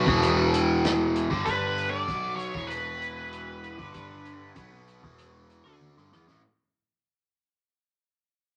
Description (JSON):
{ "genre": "psychedelic rock", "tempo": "97 BPM", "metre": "4/4", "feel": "straight", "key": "unclear", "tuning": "A4 = 440 Hz", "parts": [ { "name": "biting overdriven guitar", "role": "riff", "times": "0.0-6.4 s", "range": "E2 to D4", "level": "-30 LUFS", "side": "equal", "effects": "phaser" }, { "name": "fuzz picked electric bass", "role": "bass", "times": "0.0-6.4 s", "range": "E1 to E2", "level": "-34 LUFS", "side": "equal", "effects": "overdrive" }, { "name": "vintage drum kit", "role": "drums", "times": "0.1-6.4 s", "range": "hi-hat, kick drum, snare drum, toms", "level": "-35 LUFS", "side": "equal", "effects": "none" }, { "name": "octave-fuzz lead guitar", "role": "melody", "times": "1.5-5.8 s", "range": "B4 to D5", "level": "-35 LUFS", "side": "equal", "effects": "wah, distortion" } ], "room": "moderate club reverb, RT60 0.8 s", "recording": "none", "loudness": "-26 LUFS", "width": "mono", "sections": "0.0-6.4 A section", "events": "fade-out 0.0-6.4; drum fill 5.8-6.4", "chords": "0.1 E5; 1.3 G5; 2.5 E5; 3.8 G5; 5.0 E5; 5.6 G5" }